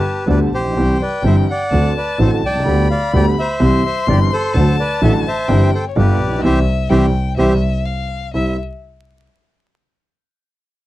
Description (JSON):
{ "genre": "tango", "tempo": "127 BPM", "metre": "4/4", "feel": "rubato", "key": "C major", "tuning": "A4 = 436 Hz", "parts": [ { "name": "bandoneon", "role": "melody", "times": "0.0-8.6 s", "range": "G4 to G5", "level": "-20 LUFS", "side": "equal", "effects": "none" }, { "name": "warm violin", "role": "second line", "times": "0.0-8.6 s", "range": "Db5 to C6", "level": "-25 LUFS", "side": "left 8 dB", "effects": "none" }, { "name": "warm upright piano", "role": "accompaniment", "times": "0.3-8.5 s", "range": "G1 to G4", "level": "-18 LUFS", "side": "right 1 dB", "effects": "none" }, { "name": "rich double bass", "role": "bass", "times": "0.3-8.5 s", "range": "G1 to D2", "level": "-16 LUFS", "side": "equal", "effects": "none" } ], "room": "little or no reverb", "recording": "dry, close 1970s-style studio recording, vinyl crackle", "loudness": "-13 LUFS", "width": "side -15 dB against mid", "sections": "0.0-8.3 A section; 8.3-10.2 B section", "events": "band accent 6.4-8.3", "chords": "0.0 G; 0.8 C; 1.7 D7; 2.7 G/D; 3.6 C; 4.5 D; 5.5 C/G; 6.0 G7; 6.4 C; 7.9 N.C.; 8.3 C" }